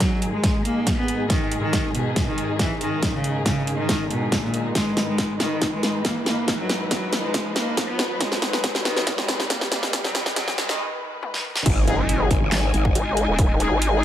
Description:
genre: heavy wobble dubstep.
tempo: 139 BPM.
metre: 4/4.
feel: half-time.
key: G# minor.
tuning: A4 = 440 Hz.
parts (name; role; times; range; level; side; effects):
rich cello; melody; 0.0-10.8 s; A#2 to B3; -26 LUFS; equal; dub echo.
dark studio string section; sustained chords; 0.0-14.0 s; G#2 to G#5; -29 LUFS; left 2 dB; sidechain pumping, low-pass filter.
dubstep drum kit; drums; 0.0-13.9 s; crash cymbal, handclaps, hi-hat, snare drum, toms; -25 LUFS; equal; studio reverb.
electronic kick drum; drums; 0.0-13.5 s; none; -24 LUFS; equal; studio reverb.
riser and impact; sound effects; 0.5-13.4 s; none; -31 LUFS; right 1 dB; none.
growl bass; bass; 11.7-12.9 s; G#1; -22 LUFS; equal; chorus, overdrive.
warm brass ensemble; stabs; 11.9-14.0 s; G#3 to G#4; -28 LUFS; left 4 dB; dub echo.
vowel-sweep wobble bass; bass; 11.9-14.0 s; D#1 to G#1; -21 LUFS; equal; chorus, overdrive.
room: light reverb, digital ambience.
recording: high-pass filter.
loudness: -20 LUFS.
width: side -11 dB against mid.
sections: 0.0-11.7 A section; 11.7-14.0 B section.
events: build-up 0.0-11.7; drum fill 0.0-10.8, 11.2-11.7; filter sweep 0.0-11.7; riser 0.5-10.8; break 10.8-11.7; drop 11.7-14.0; impact 11.7-13.4.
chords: 0.0 G#5.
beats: 0.00 0.44 0.87 | 1.30 1.73 2.16 2.59 | 3.03 3.46 3.89 4.32 | 4.75 5.18 5.62 6.05 | 6.48 6.91 7.34 7.77 | 8.21 8.64 9.07 9.50 | 9.93 10.36 10.80 11.23 | 11.66 12.09 12.52 12.95 | 13.39 13.82.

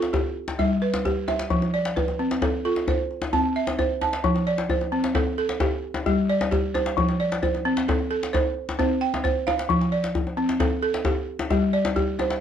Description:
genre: west african traditional, West African string and xylophone music.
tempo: 88 BPM (dotted quarters).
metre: 12/8.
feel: straight.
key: F lydian.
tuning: A4 = 438 Hz.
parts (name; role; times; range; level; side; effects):
balafon; arpeggios; 0.0-12.4 s; F3 to A5; -23 LUFS; right 1 dB; none.
djembe; percussion; 0.0-12.4 s; none; -26 LUFS; left 3 dB; none.
room: moderate studio reverb, RT60 0.5 s.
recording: none.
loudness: -21 LUFS.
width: side -9 dB against mid.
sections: 0.0-4.2 A section; 4.2-12.4 B section.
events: none.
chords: 0.1 G; 1.5 F; 2.9 C; 4.2 F; 5.6 G5; 7.0 F; 8.3 C5; 9.7 F; 11.1 G5.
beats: 0.13 0.82 | 1.51 2.19 2.88 3.56 | 4.24 4.93 5.61 6.29 | 6.97 7.65 8.33 9.01 | 9.69 10.37 11.05 11.73.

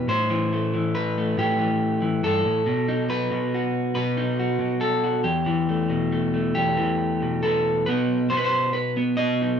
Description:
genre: folk, solo fingerstyle acoustic guitar.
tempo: 46 BPM (dotted quarters).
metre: 6/8.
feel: straight.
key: unclear.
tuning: A4 = 440 Hz.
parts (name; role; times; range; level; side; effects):
electric guitar at the edge of break-up; solo; 0.0-9.6 s; E2 to D#5; -21 LUFS; equal; none.
room: moderate studio reverb, RT60 0.8 s.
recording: minimal, uncompressed stereo recording.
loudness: -21 LUFS.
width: side -7 dB against mid.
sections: 0.0-7.9 A section; 7.9-9.6 B section.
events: none.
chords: 0.1 Am7; 2.7 B; 5.2 Em; 7.9 B.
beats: | 0.08 1.37 | 2.66 3.95 | 5.24 6.55 | 7.87 9.18.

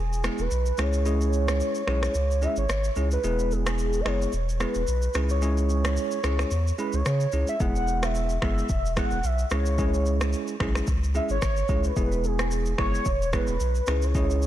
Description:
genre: afrobeats.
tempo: 110 BPM.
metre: 4/4.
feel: swing 55% on 16ths.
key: unclear.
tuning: A4 = 440 Hz.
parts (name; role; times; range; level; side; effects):
warm velvety synth lead; melody; 0.0-14.5 s; G#4 to F#5; -30 LUFS; equal; chorus, digital delay.
saturated sub bass; bass; 0.0-14.5 s; E1 to C#3; -26 LUFS; equal; none.
afro-pop drum kit; drums; 0.1-14.5 s; finger snaps, kick drum, rim click, shaker; -30 LUFS; equal; soft clipping on snare.
bell-like tine electric piano; accompaniment; 0.2-14.5 s; G#3 to G#4; -31 LUFS; moving between left 1 dB and right 7 dB; auto-pan.
room: little or no reverb.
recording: blown-out, overdriven recording, overdrive.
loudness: -23 LUFS.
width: side -12 dB against mid.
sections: 0.0-14.5 A section.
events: break 0.0-7.6.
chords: 0.0 E; 0.8 C#m; 3.2 E; 5.1 C#m; 7.6 E; 9.5 C#m; 12.0 E; 13.9 C#m.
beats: 0.51 | 1.06 1.60 2.15 2.69 | 3.24 3.79 4.33 4.88 | 5.42 5.97 6.51 7.06 | 7.60 8.15 8.70 9.24 | 9.79 10.33 10.88 11.42 | 11.97 12.51 13.06 13.60 | 14.15.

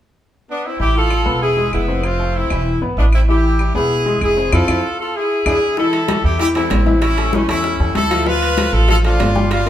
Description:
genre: latin, salsa.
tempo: 193 BPM.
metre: 4/4.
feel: straight.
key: A harmonic minor, A minor from 5.8 s.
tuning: A4 = 440 Hz.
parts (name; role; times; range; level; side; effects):
brilliant horn section; melody; 0.5-9.7 s; A3 to B4; -18 LUFS; left 1 dB; none.
bright upright piano; accompaniment; 0.8-9.7 s; E3 to G5; -21 LUFS; left 2 dB; none.
upright bass; bass; 0.8-9.7 s; E1 to F2; -18 LUFS; equal; none.
claves; percussion; 1.1-5.5 s; none; -27 LUFS; left 2 dB; none.
bongos; percussion; 5.8-9.7 s; none; -28 LUFS; left 3 dB; none.
congas; percussion; 5.8-9.7 s; none; -24 LUFS; left 2 dB; none.
timbales; percussion; 5.9-9.7 s; none; -28 LUFS; right 4 dB; none.
room: moderate large studio reverb, RT60 0.9 s.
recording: band playing live in one room.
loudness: -14 LUFS.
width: side -11 dB against mid.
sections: 0.8-5.8 A section; 5.8-9.7 B section.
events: band accent 4.5-5.8.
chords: 0.0 N.C.; 0.8 Asus2; 1.4 E; 2.0 Fmaj7; 2.7 E; 3.3 Asus2; 3.9 E; 4.5 Fmaj7; 5.2 E7; 5.8 Am7; 7.0 A7; 8.3 Dm7.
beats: 0.17 0.48 | 0.80 1.11 1.42 1.73 | 2.04 2.35 2.66 2.97 | 3.28 3.60 3.91 4.22 | 4.53 4.84 5.15 5.46 | 5.77 6.08 6.40 6.71 | 7.02 7.33 7.64 7.95 | 8.26 8.57 8.89 9.20 | 9.51.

